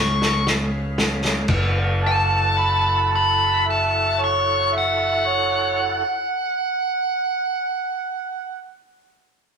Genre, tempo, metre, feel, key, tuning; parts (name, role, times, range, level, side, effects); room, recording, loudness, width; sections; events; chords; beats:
slow blues; 37 BPM (dotted quarters); 12/8; straight; F# minor; A4 = 440 Hz
dark smooth lead guitar; melody; 0.0-8.7 s; F#5 to C#6; -21 LUFS; left 2 dB; overdrive
tonewheel organ; sustained chords; 0.0-6.0 s; C#4 to F#5; -29 LUFS; right 1 dB; slow rotary speaker, overdrive
fingered electric bass; bass; 0.0-6.0 s; F#1 to C#2; -25 LUFS; equal
vintage drum kit; drums; 0.2-1.7 s; crash cymbal, kick drum, snare drum; -22 LUFS; equal
overdriven harmonica; second line; 2.0-8.7 s; C#5 to B5; -22 LUFS; right 4 dB
moderate stone room reverb, RT60 1.3 s; rough rehearsal-room recording; -18 LUFS; side -6 dB against mid
0.0-1.5 A section; 1.5-8.0 B section
drum fill 0.0-1.5; slowing down 0.0-1.5
0.0 C#7; 1.5 F#m7
| 1.50 3.11 4.73 6.34